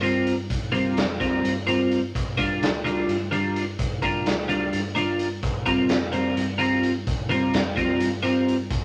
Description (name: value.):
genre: psychedelic rock.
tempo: 256 BPM (eighths).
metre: 7/8.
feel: straight.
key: unclear.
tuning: A4 = 440 Hz.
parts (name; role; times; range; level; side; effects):
twelve-string electric guitar; riff; 0.0-8.5 s; G3 to Bb4; -25 LUFS; equal; rotary speaker.
hollow-body short-scale picked electric bass; bass; 0.0-8.8 s; G1 to G2; -36 LUFS; equal; none.
raw garage drum kit; drums; 0.0-8.8 s; hi-hat, kick drum, snare drum; -30 LUFS; equal; none.
room: moderate club reverb, RT60 0.5 s.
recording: none.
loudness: -24 LUFS.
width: mono.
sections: 0.0-8.8 A section.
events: none.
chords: 0.0 Bbsus2/G; 2.2 Gm7; 5.4 Bbsus2/G.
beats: 0.04 0.27 | 0.51 0.74 0.98 1.21 1.45 1.68 1.92 | 2.15 2.39 2.62 2.86 3.09 3.33 3.56 | 3.79 4.03 4.26 4.50 4.73 4.97 5.20 | 5.43 5.67 5.90 6.14 6.37 6.61 6.84 | 7.07 7.31 7.54 7.78 8.01 8.24 8.48 | 8.71.